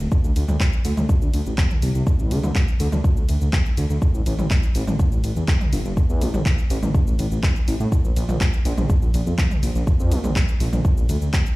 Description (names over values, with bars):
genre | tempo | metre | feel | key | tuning
melodic techno | 123 BPM | 4/4 | straight | unclear | A4 = 436 Hz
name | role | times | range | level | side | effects
dark detuned saw bass | bass | 0.0-11.3 s | G1 to A2 | -21 LUFS | equal | sidechain pumping
deep house drum kit | drums | 0.0-11.6 s | handclaps, hi-hat, ride cymbal, shaker, toms | -27 LUFS | right 1 dB | none
electronic kick drum | drums | 0.1-11.4 s | none | -18 LUFS | equal | none
room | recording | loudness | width
digital ambience | played on a big sound system in a bare room, large studio reverb | -18 LUFS | side -20 dB against mid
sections
0.0-11.6 A section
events
none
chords
none